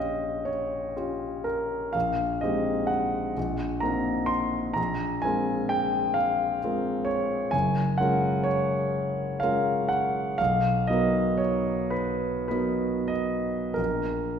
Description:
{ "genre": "classical, impressionist solo piano", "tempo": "28-45 BPM (dotted quarters)", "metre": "6/8", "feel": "rubato", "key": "unclear", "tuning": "A4 = 440 Hz", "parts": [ { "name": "warm concert grand piano", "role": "solo", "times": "0.0-14.4 s", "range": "Gb1 to C6", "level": "-24 LUFS", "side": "equal", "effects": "none" } ], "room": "wet recital hall reverb, RT60 1.6 s", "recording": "heard from further back in the room", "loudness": "-24 LUFS", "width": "side -7 dB against mid", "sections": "0.0-14.4 A section", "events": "none", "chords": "0.0 Bbm6; 1.9 Bb13sus4; 3.4 Eb5/Bb; 4.8 Bbsus2; 7.5 Gbmaj9; 10.4 Bmaj7; 13.8 N.C." }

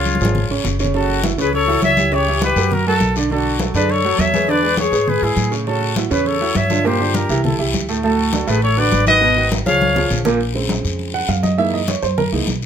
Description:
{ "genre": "Afro-Cuban jazz", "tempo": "203 BPM", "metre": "4/4", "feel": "straight", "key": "F# minor", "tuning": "A4 = 444 Hz", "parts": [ { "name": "warm trumpet", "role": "melody", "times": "0.0-10.2 s", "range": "F4 to E#5", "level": "-19 LUFS", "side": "left 1 dB", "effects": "none" }, { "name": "breathy concert flute", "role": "second line", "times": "0.0-10.2 s", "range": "E4 to C#5", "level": "-23 LUFS", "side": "left 5 dB", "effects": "none" }, { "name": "clear upright piano", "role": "accompaniment", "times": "0.0-12.5 s", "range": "A2 to Gb5", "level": "-20 LUFS", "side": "right 4 dB", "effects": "none" }, { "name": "upright bass", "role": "bass", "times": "0.0-12.7 s", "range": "Gb1 to A2", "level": "-21 LUFS", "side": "equal", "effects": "none" }, { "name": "congas", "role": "percussion", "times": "0.1-12.7 s", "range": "none", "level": "-24 LUFS", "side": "left 1 dB", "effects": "none" }, { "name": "guiro", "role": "percussion", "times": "0.1-12.7 s", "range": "none", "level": "-28 LUFS", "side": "left 8 dB", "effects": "none" } ], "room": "moderate studio reverb, RT60 0.8 s", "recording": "none", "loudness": "-15 LUFS", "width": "side -8 dB against mid", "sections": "0.9-10.4 A section; 10.4-12.7 B section", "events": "drum fill 0.1-0.9, 9.7-10.4; upright piano solo 10.4-12.7", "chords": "0.0 Db; 0.9 F#m7; 2.1 C#m7b5; 2.7 F#aug; 3.3 Bm9; 4.5 E6; 5.7 A6; 6.9 Gm7; 7.4 Cadd9; 8.0 D6; 9.2 G#m7; 9.8 C#; 10.4 Bbm9; 11.6 Gb13" }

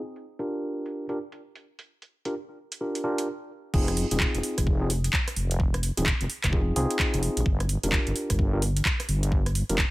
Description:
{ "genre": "UK garage, two-step garage", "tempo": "129 BPM", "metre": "4/4", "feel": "swing 62% on 16ths", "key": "F dorian", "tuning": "A4 = 437 Hz", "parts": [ { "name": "garage drum kit", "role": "drums", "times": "0.2-9.9 s", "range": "crash cymbal, handclaps, hi-hat, rim click", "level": "-29 LUFS", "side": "right 1 dB", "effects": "overdrive, studio reverb" }, { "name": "mellow tine electric piano", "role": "stabs", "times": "0.4-9.8 s", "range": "C4 to Bb4", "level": "-30 LUFS", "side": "equal", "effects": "low-pass filter, digital delay" }, { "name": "deep soft wobble bass", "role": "bass", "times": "3.7-9.8 s", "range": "Eb1 to C2", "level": "-26 LUFS", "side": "equal", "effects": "chorus, sidechain pumping" }, { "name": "electronic kick drum", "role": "drums", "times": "3.7-9.9 s", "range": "none", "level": "-26 LUFS", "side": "equal", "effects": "overdrive, studio reverb" } ], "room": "little or no reverb", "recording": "low-pass filter", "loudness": "-24 LUFS", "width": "side -19 dB against mid", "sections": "0.0-3.7 A section; 3.7-9.9 B section", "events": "filter sweep on tine electric piano 0.0-3.7; filter sweep 0.0-3.7; stop 3.3-3.7; drop 3.7-9.9", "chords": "0.0 Gm7; 3.7 Fm7; 7.5 Gm7" }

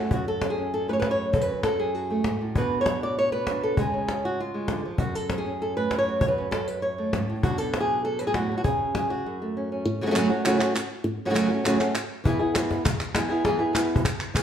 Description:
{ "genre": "flamenco", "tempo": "198 BPM", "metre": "4/4", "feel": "straight", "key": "F# minor", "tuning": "A4 = 439 Hz", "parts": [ { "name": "flamenco guitar", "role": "melody", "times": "0.0-14.4 s", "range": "F#2 to D5", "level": "-24 LUFS", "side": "equal", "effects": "none" }, { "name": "cajon", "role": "percussion", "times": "0.1-9.6, 12.3-14.4 s", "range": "none", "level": "-28 LUFS", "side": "left 1 dB", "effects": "none" }, { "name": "palmas hand claps", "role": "percussion", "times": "10.2-14.4 s", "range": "none", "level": "-30 LUFS", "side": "right 1 dB", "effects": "none" } ], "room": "wet large studio reverb, RT60 1.1 s", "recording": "band playing live in one room", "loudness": "-23 LUFS", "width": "side -9 dB against mid", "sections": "0.1-9.9 A section; 9.9-14.4 B section", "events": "drum fill 13.5-14.4", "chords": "0.1 F#m; 2.6 Bm; 3.8 C#; 5.0 F#m; 7.4 Bmadd9; 8.6 N.C.; 9.2 F#m; 12.3 E" }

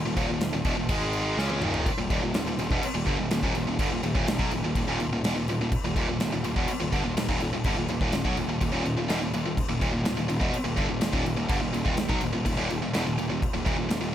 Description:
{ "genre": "heavy metal", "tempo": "124 BPM", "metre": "4/4", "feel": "straight", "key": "Eb phrygian dominant", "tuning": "A4 = 438 Hz", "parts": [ { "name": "heavy high-gain guitar", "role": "riff", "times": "0.0-14.1 s", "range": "Eb2 to Db4", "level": "-27 LUFS", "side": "equal", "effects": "distortion" }, { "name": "fuzz picked electric bass", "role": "bass", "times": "0.0-14.1 s", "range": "Eb1 to Db2", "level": "-31 LUFS", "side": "equal", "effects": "overdrive" }, { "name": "big rock drum kit", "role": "drums", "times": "0.2-14.0 s", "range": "crash cymbal, kick drum, snare drum, toms", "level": "-30 LUFS", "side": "equal", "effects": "none" } ], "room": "little or no reverb", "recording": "none", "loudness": "-24 LUFS", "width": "side -11 dB against mid", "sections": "0.0-1.9 A section; 1.9-14.1 B section", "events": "drum fill 1.4-1.9", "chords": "0.0 Eb5; 0.9 Ab5; 1.4 Eb5" }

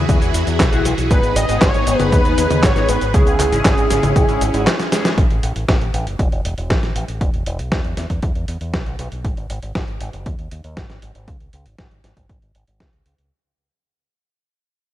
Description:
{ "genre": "italo disco", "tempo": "118 BPM", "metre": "4/4", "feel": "straight", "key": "C# minor", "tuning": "A4 = 440 Hz", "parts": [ { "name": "phased string machine", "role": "sustained chords", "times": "0.0-5.2 s", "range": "E3 to G#4", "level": "-23 LUFS", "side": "left 1 dB", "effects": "ensemble chorus, phaser" }, { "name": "chorused polysynth", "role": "stabs", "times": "0.0-5.1 s", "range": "G#2 to B4", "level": "-25 LUFS", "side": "left 2 dB", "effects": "phaser, vintage 12-bit sampler grit, digital delay" }, { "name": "fingered electric bass with an envelope filter", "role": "bass", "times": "0.0-13.3 s", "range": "E1 to E2", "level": "-22 LUFS", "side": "equal", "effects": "none" }, { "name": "dusty soul sampler-style drum kit", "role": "drums", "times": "0.1-13.3 s", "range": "cabasa, handclaps, hi-hat, snare drum, toms", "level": "-21 LUFS", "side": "equal", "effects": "none" }, { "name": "electronic kick drum", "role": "drums", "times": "0.1-12.9 s", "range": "none", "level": "-19 LUFS", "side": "equal", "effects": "none" }, { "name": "wide unison lead", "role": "melody", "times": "1.1-4.6 s", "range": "G#4 to D#5", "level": "-21 LUFS", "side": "right 1 dB", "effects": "digital delay" } ], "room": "light reverb, digital ambience", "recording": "dark, warm production", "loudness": "-15 LUFS", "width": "side -13 dB against mid", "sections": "0.0-5.2 A section; 5.2-13.3 B section", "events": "drum fill 4.8-5.2; fade-out 5.2-13.3", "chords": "0.0 Eadd9; 1.1 G#m; 3.1 C#m; 5.2 A5; 7.2 E5; 9.2 G#5; 11.3 C#5" }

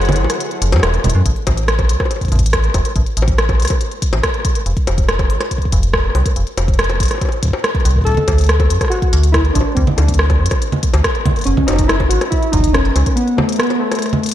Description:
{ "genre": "IDM", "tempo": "141 BPM", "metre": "4/4", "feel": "straight", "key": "unclear", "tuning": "A4 = 436 Hz", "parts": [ { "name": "warbly lo-fi synth keys", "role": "melody", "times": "0.0-0.8, 8.0-14.3 s", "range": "A3 to C#5", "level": "-19 LUFS", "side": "equal", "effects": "chorus, ping-pong delay" }, { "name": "warm analog pad", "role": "sustained chords", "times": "0.0-1.3 s", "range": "F#3 to F#5", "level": "-26 LUFS", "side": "left 1 dB", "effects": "chorus, sidechain pumping" }, { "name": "metallic FM bass", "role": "bass", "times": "0.0-13.0 s", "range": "E1 to F#2", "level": "-15 LUFS", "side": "equal", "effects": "none" }, { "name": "organic electronic drum kit", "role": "drums", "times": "0.0-14.3 s", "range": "bongos, congas, hi-hat, rim click", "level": "-18 LUFS", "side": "equal", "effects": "gated reverb, ping-pong delay" }, { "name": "electronic kick drum", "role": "drums", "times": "1.3-13.1 s", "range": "none", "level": "-18 LUFS", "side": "equal", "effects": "none" } ], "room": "light reverb", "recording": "bright 1980s-style digital production", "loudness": "-13 LUFS", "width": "side -12 dB against mid", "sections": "0.0-1.3 A section; 1.3-14.3 B section", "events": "break 0.0-1.3; drum fill 1.0", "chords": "0.0 F#m7; 1.3 N.C.; 8.1 D5; 11.5 F#m" }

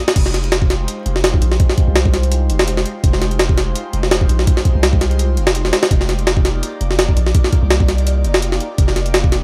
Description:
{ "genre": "drum and bass, jungle", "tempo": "167 BPM", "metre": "4/4", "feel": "swing 54% on 16ths", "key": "F dorian", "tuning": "A4 = 440 Hz", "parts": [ { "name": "jungle sampler-style drum kit", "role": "drums", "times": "0.1-9.4 s", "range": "crash cymbal, hi-hat, kick drum, snare drum", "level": "-17 LUFS", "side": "equal", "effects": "small room ambience" }, { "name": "long sustained 808-style bass", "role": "bass", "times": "0.2-9.4 s", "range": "F1 to C2", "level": "-20 LUFS", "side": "equal", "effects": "none" } ], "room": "little or no reverb", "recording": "dry, gritty hardware recording, vinyl crackle", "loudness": "-16 LUFS", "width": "mono", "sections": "0.2-9.4 A section", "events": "drop 0.2-9.4", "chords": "none" }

